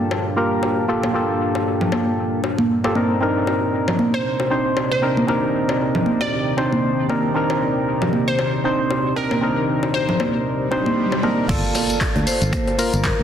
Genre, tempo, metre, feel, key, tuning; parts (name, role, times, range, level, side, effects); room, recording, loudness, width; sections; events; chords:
deep house; 116 BPM; 4/4; swing 57% on 16ths; A4 = 441 Hz
deep dark ambient pad; sustained chords; 0.0-13.2 s; G2 to A5; -25 LUFS; left 1 dB; chorus, built-in reverb, sidechain pumping
percussive organ stab; stabs; 0.0-13.2 s; Bb3 to C5; -21 LUFS; equal; chorus, sidechain pumping, dub echo
bongos and congas; percussion; 0.1-13.2 s; -23 LUFS; equal; overdrive
glassy wavetable pluck; melody; 4.1-10.7 s; Bb4 to D5; -26 LUFS; equal; chorus, dub echo
swell and impact; sound effects; 10.6-13.2 s; -28 LUFS; equal
vibraphone with medium hard mallets; melody; 11.5-13.2 s; Bb4 to D5; -26 LUFS; right 1 dB; dub echo
fingered electric bass; bass; 11.5-13.2 s; G1 to D2; -21 LUFS; equal; sidechain pumping
electronic kick drum; drums; 11.5-13.2 s; -24 LUFS; equal
gated 80s drum kit; drums; 11.5-13.2 s; hi-hat, snare drum; -34 LUFS; right 3 dB; high-pass filter on hats, high-pass filter on snare, high-pass filter on room
punchy analog drum machine; drums; 11.5-13.2 s; crash cymbal, finger snaps, handclaps, hi-hat, tambourine; -24 LUFS; left 2 dB; low-pass filter on cymbals, low-pass filter on hats, low-pass filter on perc, low-pass filter on snare
moderate lush hall reverb, RT60 1.9 s, digital ambience; dense, heavily limited modern master; -17 LUFS; side -9 dB against mid
0.0-11.5 A section; 11.5-13.2 B section
filter sweep on synth stab 0.0-11.5; swell 10.6-11.5; drop 11.5-13.2; impact 11.5-13.2
0.0 Gm9; 3.0 Cm9; 11.5 Gm9